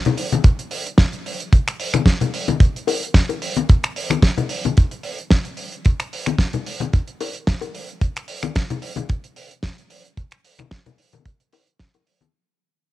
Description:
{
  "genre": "nu-disco",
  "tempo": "111 BPM",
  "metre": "4/4",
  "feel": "swing 53% on 16ths",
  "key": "none",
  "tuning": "none",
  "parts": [
    { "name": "damped 70s drum kit", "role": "drums", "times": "0.1-12.3 s", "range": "finger snaps, hi-hat, snare drum", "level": "-23 LUFS", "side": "right 1 dB", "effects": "cassette tape" },
    { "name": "congas and bongos", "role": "percussion", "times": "0.1-12.3 s", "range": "none", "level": "-22 LUFS", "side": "left 6 dB", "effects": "none" },
    { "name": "kick drum", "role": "drums", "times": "0.4-11.9 s", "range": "none", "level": "-14 LUFS", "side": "equal", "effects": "cassette tape" }
  ],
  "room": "small room ambience",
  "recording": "home recording on cassette",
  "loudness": "-18 LUFS",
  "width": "side -16 dB against mid",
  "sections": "0.0-12.3 A section",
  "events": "drop 0.0-12.3; fade-out 3.7-12.3",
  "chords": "none",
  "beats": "0.45 0.99 | 1.53 2.07 2.61 3.15 | 3.69 4.23 4.77 5.31 | 5.85 6.39 6.93 7.47 | 8.02 8.56 9.10 9.64 | 10.18 10.72 11.26 11.80"
}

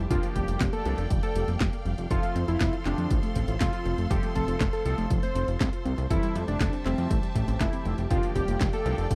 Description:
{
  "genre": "italo disco",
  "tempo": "120 BPM",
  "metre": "4/4",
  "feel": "straight",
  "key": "F major",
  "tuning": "A4 = 440 Hz",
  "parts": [
    { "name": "clear studio string section", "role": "sustained chords", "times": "0.0-9.2 s", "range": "G4 to C6", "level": "-42 LUFS", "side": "equal", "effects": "none" },
    { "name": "unison pluck", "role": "arpeggios", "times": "0.0-9.2 s", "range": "D3 to F5", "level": "-39 LUFS", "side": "equal", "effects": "tape echo" },
    { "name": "bright grand piano", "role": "stabs", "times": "0.0-9.0 s", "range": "F3 to A4", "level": "-40 LUFS", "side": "equal", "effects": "none" },
    { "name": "fat analog bass", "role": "bass", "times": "0.0-9.2 s", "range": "F1 to F2", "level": "-31 LUFS", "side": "equal", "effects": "tube saturation" },
    { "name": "unison lead", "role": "melody", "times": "0.1-9.1 s", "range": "C4 to C5", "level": "-34 LUFS", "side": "equal", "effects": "tape echo" },
    { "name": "electronic kick drum", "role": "drums", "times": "0.1-9.2 s", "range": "none", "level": "-31 LUFS", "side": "equal", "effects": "none" },
    { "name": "house drum kit", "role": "drums", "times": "0.1-9.2 s", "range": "handclaps, hi-hat, snare drum", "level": "-35 LUFS", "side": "equal", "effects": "none" }
  ],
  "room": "little or no reverb",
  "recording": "dry, close 1970s-style studio recording",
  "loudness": "-27 LUFS",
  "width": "mono",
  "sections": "0.0-9.2 A section",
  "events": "none",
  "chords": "0.1 Gm7/F; 2.1 F; 6.1 C6/F; 8.1 Gm7/F",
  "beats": "| 0.11 0.61 1.11 1.61 | 2.11 2.61 3.11 3.61 | 4.11 4.61 5.11 5.61 | 6.11 6.61 7.11 7.61 | 8.11 8.61 9.11"
}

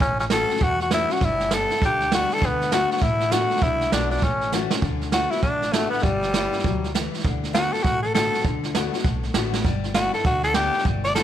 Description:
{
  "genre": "rockabilly",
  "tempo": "199 BPM",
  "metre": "4/4",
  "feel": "swing 62% on 8ths",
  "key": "D major",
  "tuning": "A4 = 440 Hz",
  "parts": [
    { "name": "growling tenor saxophone", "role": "melody", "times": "0.0-11.2 s", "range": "G3 to D5", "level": "-23 LUFS", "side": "equal", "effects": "none" },
    { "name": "picked steel-string acoustic guitar", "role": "accompaniment", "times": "0.0-11.2 s", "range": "E2 to F#4", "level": "-29 LUFS", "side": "left 12 dB", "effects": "none" },
    { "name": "upright bass", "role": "bass", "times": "0.0-11.2 s", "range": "G1 to E2", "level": "-30 LUFS", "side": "equal", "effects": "none" },
    { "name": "jazz brush drum kit", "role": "drums", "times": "0.0-11.2 s", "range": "hi-hat, kick drum, snare drum", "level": "-24 LUFS", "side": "right 3 dB", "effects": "none" }
  ],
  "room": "light reverb",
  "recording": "1960s-style stereo",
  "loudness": "-20 LUFS",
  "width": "side -10 dB against mid",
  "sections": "0.0-4.8 A section; 4.8-11.2 B section",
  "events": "drum fill 4.5-4.8, 9.5; tenor saxophone solo 4.8-11.2",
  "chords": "0.0 A6; 1.2 G6; 2.4 D6; 4.2 A6; 4.8 D6; 6.0 G6; 7.2 D6; 9.7 G6",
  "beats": "| 0.00 0.31 0.61 0.91 | 1.21 1.51 1.82 2.12 | 2.42 2.72 3.02 3.32 | 3.63 3.93 4.23 4.53 | 4.83 5.13 5.43 5.74 | 6.04 6.34 6.64 6.94 | 7.24 7.54 7.84 8.14 | 8.45 8.75 9.05 9.35 | 9.65 9.95 10.25 10.55 | 10.86 11.16"
}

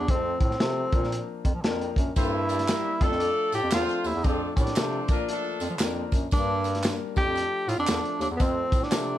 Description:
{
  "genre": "uptempo 1960s-style soul",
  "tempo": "116 BPM",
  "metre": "4/4",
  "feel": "swing 62% on 8ths",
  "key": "F major",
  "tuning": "A4 = 440 Hz",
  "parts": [
    { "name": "breathy tenor saxophone", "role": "melody", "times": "0.0-9.2 s", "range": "B3 to A4", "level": "-28 LUFS", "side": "right 1 dB", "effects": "none" },
    { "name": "warm baby grand piano", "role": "accompaniment", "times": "0.0-9.2 s", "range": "E3 to A5", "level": "-34 LUFS", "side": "left 7 dB", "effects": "none" },
    { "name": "warm bass clarinet", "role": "bass", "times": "0.0-9.2 s", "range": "Eb2 to F3", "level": "-31 LUFS", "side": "right 1 dB", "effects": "none" },
    { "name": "crunchy breakbeat drum kit", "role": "drums", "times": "0.1-9.1 s", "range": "hi-hat, kick drum, snare drum", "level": "-26 LUFS", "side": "equal", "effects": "none" },
    { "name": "clear horn section", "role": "second line", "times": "2.2-5.8 s", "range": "A3 to D5", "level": "-32 LUFS", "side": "left 3 dB", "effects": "none" },
    { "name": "tambourine and handclaps", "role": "percussion", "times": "2.2-9.1 s", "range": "none", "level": "-38 LUFS", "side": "right 3 dB", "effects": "none" }
  ],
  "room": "light reverb",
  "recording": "dark, warm production",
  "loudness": "-23 LUFS",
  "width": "side -12 dB against mid",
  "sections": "0.0-9.2 A section",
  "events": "grand piano fill 1.4-2.2",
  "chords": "0.1 F; 0.9 Bb; 2.2 Gm; 2.9 Dm/F; 4.2 F; 5.0 Bb; 6.3 Gm; 7.1 Dm/F; 8.4 F",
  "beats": "| 0.09 0.61 1.13 1.65 | 2.17 2.68 3.20 3.72 | 4.24 4.76 5.28 5.80 | 6.32 6.84 7.36 7.88 | 8.40 8.92"
}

